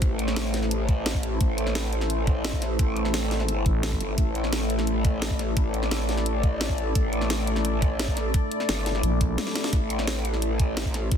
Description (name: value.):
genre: dark technical drum and bass.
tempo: 173 BPM.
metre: 4/4.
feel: straight.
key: A minor.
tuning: A4 = 440 Hz.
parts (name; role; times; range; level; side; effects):
deep dark ambient pad; sustained chords; 0.0-11.2 s; A3 to D5; -29 LUFS; left 1 dB; chorus, built-in reverb, sidechain pumping.
growl bass; bass; 0.0-11.2 s; G1 to A1; -28 LUFS; equal; distortion, chorus, overdrive, sidechain pumping.
drum and bass drum kit; drums; 0.0-11.2 s; hi-hat, snare drum, toms; -30 LUFS; equal; none.
electronic kick drum; drums; 0.0-11.2 s; none; -24 LUFS; equal; none.
growling FM bass; bass; 3.7-4.0, 9.0-9.4 s; A1 to Bb1; -25 LUFS; equal; none.
room: little or no reverb.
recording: dense, heavily limited modern master.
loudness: -23 LUFS.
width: side -8 dB against mid.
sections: 0.0-11.2 A section.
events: break 9.4-9.7; drum fill 9.4-9.7.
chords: 0.0 Am.